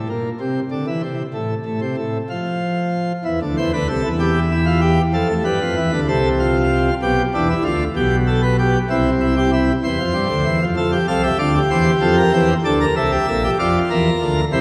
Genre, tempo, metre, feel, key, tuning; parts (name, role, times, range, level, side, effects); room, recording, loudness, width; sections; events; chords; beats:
classical, baroque-style 3-part fugue for pipe organ; 64 BPM (dotted quarters); 12/8; straight; A4 = 440 Hz
pipe organ, plenum; solo; 0.0-14.6 s; Bb1 to F5; -18 LUFS; equal
wet church reverb, RT60 2.8 s; -18 LUFS; mono
0.0-14.6 A section
0.0 N.C.; 3.3 C; 7.0 G7/B; 8.9 C; 10.8 F; 12.7 Bb
0.41 1.36 2.31 | 3.26 4.21 5.14 6.09 | 7.03 7.97 8.90 9.84 | 10.78 11.72 12.66 13.60 | 14.53